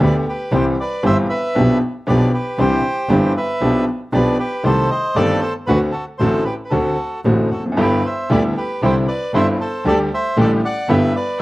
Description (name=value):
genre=tango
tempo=116 BPM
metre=4/4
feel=rubato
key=G major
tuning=A4 = 443 Hz
part: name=bandoneon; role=melody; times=0.0-11.4 s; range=F#4 to F#5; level=-21 LUFS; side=right 1 dB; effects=slapback echo
part: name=clear concert grand piano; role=accompaniment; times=0.0-11.1 s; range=G1 to G4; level=-18 LUFS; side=left 1 dB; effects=slapback echo
part: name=rich double bass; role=bass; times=0.0-11.1 s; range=F1 to D2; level=-20 LUFS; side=right 1 dB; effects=none
part: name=dark chamber string section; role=stabs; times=7.8-11.4 s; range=A3 to G4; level=-26 LUFS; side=right 2 dB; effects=slapback echo
room=little or no reverb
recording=recorded outdoors, with no room sound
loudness=-15 LUFS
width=side -18 dB against mid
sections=0.0-11.4 A section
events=none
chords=0.0 Gadd9; 0.5 C; 1.6 G7/B; 2.6 Cadd9; 3.6 G7/B; 4.6 Cm6; 5.7 D7; 7.8 G6; 8.8 Cadd9; 9.9 Dsus4; 10.9 G6